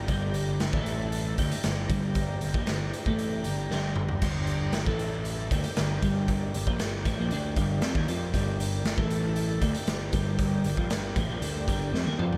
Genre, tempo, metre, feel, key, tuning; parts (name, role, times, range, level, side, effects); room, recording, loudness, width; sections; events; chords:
psychedelic rock; 116 BPM; 4/4; straight; G minor; A4 = 440 Hz
mellow tonewheel organ; sustained chords; 0.0-12.4 s; E4 to Bb5; -40 LUFS; equal; slow rotary speaker
twelve-string electric guitar; riff; 0.0-12.4 s; G2 to F4; -32 LUFS; equal; rotary speaker, double-tracked
fuzz picked electric bass; bass; 0.0-12.4 s; G1 to F2; -35 LUFS; equal; overdrive
raw garage drum kit; drums; 0.1-12.4 s; crash cymbal, hi-hat, kick drum, snare drum, toms; -33 LUFS; equal
light reverb, studio reverb; -28 LUFS; mono
0.0-12.4 A section
drum fill 3.7-4.2, 11.9-12.4
0.0 Gm; 0.7 A5; 1.4 Gm; 4.9 A5; 5.5 Gm; 9.0 A5; 9.6 Gm